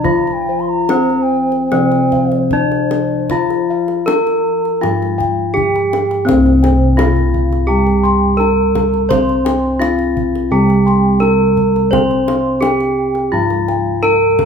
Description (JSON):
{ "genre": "Javanese gamelan", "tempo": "70-85 BPM", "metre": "4/4", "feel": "straight", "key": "C slendro", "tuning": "A4 = 441 Hz", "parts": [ { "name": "gamelan-type bronze metallophone", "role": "melody", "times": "0.0-14.5 s", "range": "C4 to C5", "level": "-16 LUFS", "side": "left 1 dB", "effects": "none" }, { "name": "mellow hollow bansuri", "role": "second line", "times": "0.0-3.9 s", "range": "C5 to C6", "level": "-21 LUFS", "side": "left 1 dB", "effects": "none" }, { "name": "gamelan-type bronze metallophone", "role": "accompaniment", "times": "0.0-14.5 s", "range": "C3 to C4", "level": "-19 LUFS", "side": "right 2 dB", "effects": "none" }, { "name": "gamelan-type bronze metallophone", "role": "arpeggios", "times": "0.0-14.5 s", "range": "C5 to C6", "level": "-24 LUFS", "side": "right 4 dB", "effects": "none" }, { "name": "gamelan-type bossed gongs", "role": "bass", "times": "0.0-14.5 s", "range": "C2 to C5", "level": "-19 LUFS", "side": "left 1 dB", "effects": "none" }, { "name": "kendang", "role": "percussion", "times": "0.0-14.5 s", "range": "none", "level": "-23 LUFS", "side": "left 2 dB", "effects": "none" }, { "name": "gamelan-type bossed gongs", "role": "arpeggios", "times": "0.1-14.4 s", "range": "C5 to C6", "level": "-23 LUFS", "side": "left 6 dB", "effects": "none" } ], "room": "moderate large studio reverb, RT60 1.2 s", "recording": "band playing live in one room", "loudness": "-12 LUFS", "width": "side -6 dB against mid", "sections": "0.0-6.3 A section; 6.3-14.5 B section", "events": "none", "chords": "none" }